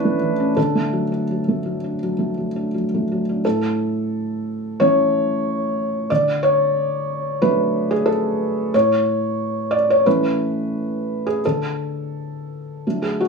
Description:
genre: neoclassical minimalist piano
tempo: 83-93 BPM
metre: 4/4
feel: rubato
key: A major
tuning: A4 = 440 Hz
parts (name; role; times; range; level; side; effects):
- felt-muted upright piano; solo; 0.0-13.3 s; A2 to D5; -18 LUFS; equal; none
room: moderate studio reverb, RT60 0.9 s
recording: small room ambience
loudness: -18 LUFS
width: side -4 dB against mid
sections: 0.0-3.4 A section; 3.4-13.3 A section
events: none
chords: 0.0 A; 0.6 D; 3.4 A; 6.1 D; 8.7 A; 11.4 D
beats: | 0.57 1.29 2.01 2.73 | 3.44 4.11 4.78 5.44 | 6.09 6.75 7.41 8.07 | 8.73 9.39 10.05 10.73 | 11.43 12.14 12.85

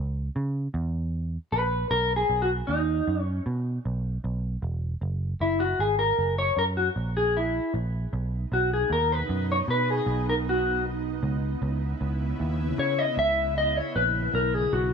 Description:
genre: indie pop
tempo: 77 BPM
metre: 4/4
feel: straight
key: B major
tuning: A4 = 440 Hz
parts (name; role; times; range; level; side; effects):
- vintage muted picked electric bass; bass; 0.0-14.9 s; E1 to C#3; -28 LUFS; right 1 dB; none
- mellow electric guitar; accompaniment; 1.5-14.9 s; D#4 to E5; -25 LUFS; left 2 dB; wide subtle chorus, warbly pitch drift
- ethereal airy pad; sustained chords; 8.4-14.9 s; B2 to E4; -33 LUFS; right 2 dB; ensemble chorus, built-in reverb
room: light reverb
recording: none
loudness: -24 LUFS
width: side -6 dB against mid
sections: 0.0-14.9 A section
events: clean electric guitar solo 0.0-14.9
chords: 0.0 C#m; 1.9 B; 5.0 F#add9; 8.1 B; 11.2 C#m9; 14.3 Bmaj7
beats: 0.36 1.13 | 1.91 2.69 3.47 4.24 | 5.02 5.80 6.57 7.35 | 8.13 8.90 9.68 10.46 | 11.23 12.01 12.79 13.56 | 14.34

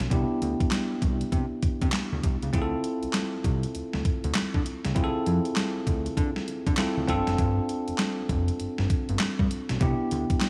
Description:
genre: R&B, new jack swing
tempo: 99 BPM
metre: 4/4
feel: swing 62% on 16ths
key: D dorian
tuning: A4 = 440 Hz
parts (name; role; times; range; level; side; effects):
- bell-like tine electric piano; accompaniment; 0.0-10.5 s; B3 to A4; -32 LUFS; equal; none
- fat analog bass; bass; 0.0-10.3 s; F1 to D3; -31 LUFS; equal; none
- clean 12-bit digital drum machine; drums; 0.0-10.5 s; handclaps, hi-hat, kick drum, snare drum; -30 LUFS; equal; overdrive
room: light reverb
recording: small room ambience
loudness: -27 LUFS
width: mono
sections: 0.0-10.5 A section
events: none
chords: 0.1 Cmaj7; 2.5 Dm7; 7.1 G7sus4; 9.8 Cmaj7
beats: | 0.11 0.72 1.32 1.93 | 2.54 3.14 3.75 4.36 | 4.96 5.57 6.17 6.78 | 7.39 7.99 8.60 9.20 | 9.81 10.42

